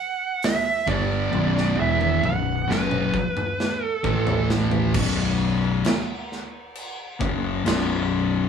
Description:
stoner and doom metal; 66 BPM; 4/4; straight; B minor; A4 = 440 Hz
fuzz lead guitar; melody; 0.0-4.5 s; B4 to F#5; -25 LUFS; right 4 dB; distortion
big rock drum kit; drums; 0.4-7.9 s; crash cymbal, hi-hat, kick drum, snare drum, toms; -27 LUFS; right 1 dB
thick fuzz guitar; riff; 0.9-8.5 s; B1 to A3; -24 LUFS; left 5 dB; distortion
thick fuzz guitar; riff; 0.9-4.9 s; B1 to A3; -26 LUFS; right 8 dB; distortion
growling fingered electric bass; bass; 0.9-8.5 s; B0 to A1; -28 LUFS; equal; overdrive
moderate studio reverb, RT60 0.8 s; band playing live in one room, small room ambience; -20 LUFS; side -7 dB against mid
0.0-4.9 A section; 4.9-8.5 B section
drum fill 1.3-4.9
0.0 Bm; 4.0 A5; 4.9 B5
0.43 | 1.33 2.23 3.14 4.04 | 4.95 5.85 6.75 7.66

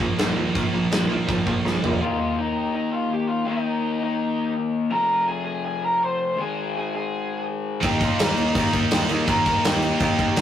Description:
punk rock; 165 BPM; 4/4; straight; A4 = 441 Hz
distorted electric guitar; riff; 0.0-2.0, 7.8-10.4 s; Bb2 to Eb4; -26 LUFS; right 5 dB; overdrive
heavy high-gain guitar; riff; 0.0-2.0, 7.8-10.4 s; Bb2 to Eb4; -29 LUFS; right 2 dB; distortion
raw garage guitar; riff; 0.0-10.4 s; F2 to Eb4; -26 LUFS; left 4 dB; overdrive
overdriven picked electric bass; bass; 0.0-2.0, 7.8-10.4 s; Bb1 to Eb2; -28 LUFS; equal
big rock drum kit; drums; 0.0-1.9, 7.8-10.4 s; crash cymbal, kick drum, snare drum, toms; -24 LUFS; equal
lead guitar through a small cranked amp; melody; 2.0-10.4 s; Eb4 to C6; -25 LUFS; equal; overdrive
moderate studio reverb, RT60 0.6 s; rough rehearsal-room recording, warm saturation; -20 LUFS; side -10 dB against mid
0.0-2.0 A section; 2.0-10.4 B section
drum fill 1.6-2.0
0.0 Bb5; 2.0 Eb5; 4.9 Fm; 6.4 Ab5; 7.8 Eb
0.18 | 0.54 0.91 1.27 1.64 | 2.00 2.37 2.73 3.10 | 3.46 3.82 4.19 4.55 | 4.91 5.28 5.64 6.01 | 6.37 6.73 7.10 7.46 | 7.83 8.19 8.55 8.92 | 9.28 9.64 10.01 10.37

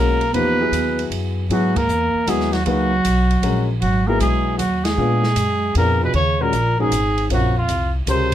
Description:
modal jazz; 155 BPM; 3/4; swing 67% on 8ths; C# dorian; A4 = 439 Hz
warm trumpet; melody; 0.0-8.3 s; F4 to Db5; -21 LUFS; equal
breathy bass clarinet; second line; 0.0-8.3 s; F2 to B3; -23 LUFS; right 4 dB
warm grand piano; accompaniment; 0.0-8.3 s; E#3 to Db5; -23 LUFS; left 5 dB
upright bass; bass; 0.0-8.3 s; G#1 to A#2; -21 LUFS; equal
open jazz drum kit; drums; 0.2-8.3 s; hi-hat, kick drum, ride cymbal, snare drum; -30 LUFS; right 1 dB
light reverb; close, detailed microphones; -16 LUFS; side -11 dB against mid
0.0-6.1 A section; 6.1-8.3 B section
band accent 1.7, 4.8
0.0 C#m11; 5.0 A#7b9; 6.1 Ebm11
| 0.35 0.73 1.12 | 1.51 1.89 2.28 | 2.67 3.05 3.44 | 3.83 4.21 4.60 | 4.98 5.37 5.76 | 6.14 6.53 6.91 | 7.30 7.68 8.07

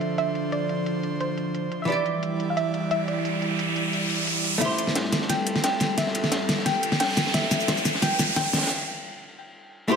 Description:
liquid drum and bass; 176 BPM; 4/4; straight; A minor; A4 = 440 Hz
soft round pluck; melody; 0.0-8.7 s; C5 to G5; -29 LUFS; equal; chorus, digital delay
archtop guitar, miked and amplified; accompaniment; 0.0-10.0 s; D3 to D5; -28 LUFS; right 1 dB; low-pass filter, digital delay
airy breathy pad; sustained chords; 0.0-8.7 s; F3 to D5; -31 LUFS; equal; chorus
pop drum kit; drums; 0.0-8.6 s; hi-hat, shaker, snare drum; -26 LUFS; equal; low-pass filter on hats, low-pass filter on snare, low-pass filter on perc
riser; sound effects; 2.4-8.7 s; -29 LUFS; right 2 dB
dark detuned saw bass; bass; 4.6-8.7 s; E1 to A1; -39 LUFS; equal
crunchy breakbeat drum kit; drums; 4.6-8.7 s; hi-hat, ride cymbal, snare drum; -31 LUFS; left 1 dB; high-pass filter on cymbals, high-pass filter on hats, high-pass filter on snare, high-pass filter on room
moderate recital hall reverb, RT60 1.3 s, small room ambience; -22 LUFS; side -6 dB against mid
0.0-4.6 A section; 4.6-10.0 B section
filter sweep on hollow-body jazz guitar 0.0-4.6; riser 2.4-4.6, 4.6-8.7; build-up 4.6-10.0; drum fill 4.6-8.7; break 8.7-10.0
0.0 Dm7; 1.9 Em7; 4.6 Am7
0.18 | 0.52 0.86 1.21 1.55 | 1.89 2.23 2.57 2.91 | 3.25 3.59 3.93 4.27 | 4.62 4.96 5.30 5.64 | 5.98 6.32 6.66 7.00 | 7.34 7.68 8.02 8.37 | 8.71 9.05 9.39 9.73

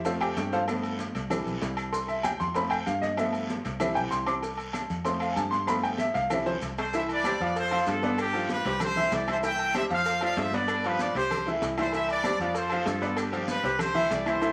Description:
latin, salsa; 192 BPM; 4/4; straight; C major; A4 = 440 Hz
bright baby grand piano; accompaniment; 0.0-14.5 s; E3 to D6; -31 LUFS; equal
fingered electric bass; bass; 0.0-14.5 s; B1 to G2; -38 LUFS; equal
agogo bells and timbales; percussion; 0.0-14.5 s; -39 LUFS; equal
congas; percussion; 0.1-14.5 s; -41 LUFS; equal
cowbell and bongos; percussion; 0.1-14.5 s; -41 LUFS; equal
guiro; percussion; 0.1-14.5 s; -46 LUFS; equal
maracas; percussion; 0.1-14.5 s; -51 LUFS; equal
claves; percussion; 0.2-14.4 s; -45 LUFS; equal
bright trumpet section; melody; 6.8-14.5 s; D4 to G5; -31 LUFS; equal
wet studio reverb, RT60 0.6 s; vinyl crackle; -28 LUFS; mono
0.0-6.9 A section; 6.9-14.5 B section
grand piano solo 0.0-6.9; drum fill 6.5-6.9, 11.5-11.9
0.1 F; 0.7 G7; 1.3 C; 2.6 F; 3.2 G7; 3.8 C; 5.1 F; 5.7 G7; 6.3 C; 7.6 F; 8.2 G7; 8.8 C; 10.1 F5; 10.7 G7; 11.3 C; 12.6 F; 13.2 G7; 13.8 C
0.05 0.37 | 0.68 0.99 1.30 1.62 | 1.93 2.24 2.56 2.87 | 3.18 3.49 3.81 4.12 | 4.43 4.75 5.06 5.37 | 5.68 6.00 6.31 6.62 | 6.94 7.25 7.56 7.87 | 8.19 8.50 8.81 9.12 | 9.44 9.75 10.06 10.37 | 10.68 10.99 11.31 11.62 | 11.93 12.24 12.55 12.87 | 13.18 13.49 13.80 14.11 | 14.43

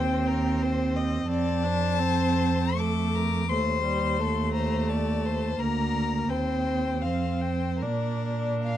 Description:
classical, slow romantic movement for string quartet; 83 BPM; 3/4; uneven beats, rubato; A4 = 440 Hz
rich violin; melody; 0.0-8.8 s; Bb4 to D6; -32 LUFS; left 10 dB
rich violin; second line; 0.0-8.8 s; A4 to F5; -33 LUFS; left 4 dB
clear viola; accompaniment; 0.0-8.8 s; G3 to D4; -29 LUFS; right 2 dB
rich cello; bass; 0.0-8.8 s; D2 to Bb2; -28 LUFS; right 3 dB
light reverb; dark, warm production; -24 LUFS; side -11 dB against mid
0.0-8.8 A section
0.0 Cm/Eb; 1.3 F; 3.5 Cm6/Eb; 5.6 Bb/D; 6.3 Cm/Eb; 7.0 Fsus2; 7.8 Bb
0.62 | 1.30 2.00 2.78 | 3.50 4.20 4.89 | 5.60 6.30 7.03 | 7.82 8.63

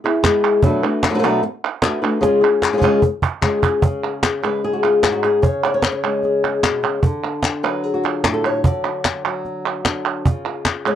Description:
flamenco; 150 BPM; 4/4; straight; C# phrygian dominant; A4 = 440 Hz
flamenco guitar; melody; 0.0-11.0 s; G#2 to D5; -18 LUFS; left 2 dB
palmas hand claps; percussion; 0.1-11.0 s; -22 LUFS; right 2 dB
cajon; percussion; 0.2-10.9 s; -18 LUFS; right 2 dB
light reverb; dry, close 1970s-style studio recording; -16 LUFS; side -10 dB against mid
0.0-3.8 A section; 3.8-11.0 B section
drum fill 2.2-3.8
0.0 E; 0.6 Bm7; 2.2 C#; 3.8 C#5; 7.0 D; 10.3 C#
0.24 | 0.64 1.03 1.43 1.83 | 2.23 2.63 3.03 3.43 | 3.83 4.23 4.63 5.03 | 5.43 5.84 6.24 6.64 | 7.04 7.44 7.84 8.25 | 8.65 9.05 9.45 9.85 | 10.26 10.66

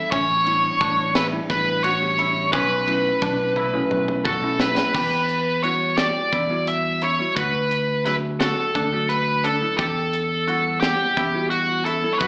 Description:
progressive instrumental, band music in an uneven meter; 174 BPM (eighths); 7/8; straight; E dorian; A4 = 440 Hz
nasal lead guitar with a parked wah; melody; 0.0-12.3 s; F#4 to E5; -20 LUFS; equal; overdrive
bell-like tine electric piano; accompaniment; 0.0-12.2 s; F#3 to F#5; -29 LUFS; equal
koto; arpeggios; 0.0-12.3 s; C#4 to G4; -30 LUFS; equal; slapback echo
picked electric bass; bass; 0.1-12.3 s; A1 to F#2; -28 LUFS; equal
tight metal drum kit; drums; 0.1-12.3 s; crash cymbal, hi-hat, kick drum, ride cymbal, snare drum, toms; -28 LUFS; equal
light reverb, studio reverb; live gig heard through the venue's PA, club reverb, AM radio sound; -18 LUFS; side -38 dB against mid
0.0-4.9 A section; 4.9-12.3 B section
drum fill 3.6-4.9
0.1 A9sus4; 2.5 B9sus4; 4.9 Emadd9; 7.4 D; 9.8 Emadd9
| 0.12 0.46 0.81 1.15 1.50 1.84 2.19 | 2.53 2.88 3.22 3.57 3.91 4.26 4.60 | 4.95 5.29 5.64 5.98 6.33 6.67 7.02 | 7.37 7.71 8.06 8.40 8.75 9.09 9.44 | 9.79 10.13 10.48 10.82 11.17 11.52 11.86 | 12.21

